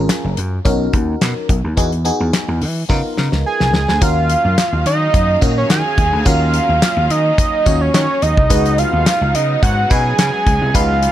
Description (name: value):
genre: early-eighties boogie funk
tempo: 107 BPM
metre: 4/4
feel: straight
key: unclear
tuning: A4 = 439 Hz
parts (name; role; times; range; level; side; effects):
- FM electric piano; accompaniment; 0.0-11.1 s; B3 to C#5; -22 LUFS; left 2 dB; chorus, phaser
- vintage slap bass; bass; 0.0-11.1 s; F#1 to E3; -18 LUFS; equal; none
- damped 70s drum kit; drums; 0.1-11.1 s; handclaps, hi-hat, kick drum, snare drum; -17 LUFS; equal; none
- fat analog lead; melody; 3.5-11.1 s; C#5 to G#5; -16 LUFS; right 2 dB; chorus
- warm studio string section; sustained chords; 4.0-11.1 s; C#3 to E#5; -26 LUFS; left 2 dB; none
room: small room ambience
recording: none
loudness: -13 LUFS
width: side -12 dB against mid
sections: 0.0-4.0 A section; 4.0-11.1 B section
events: drum fill 2.9-4.0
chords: 0.0 F#maj9; 0.7 Bmaj9; 1.8 Emaj9; 2.9 C#13; 4.0 D#m9; 8.5 C#9sus4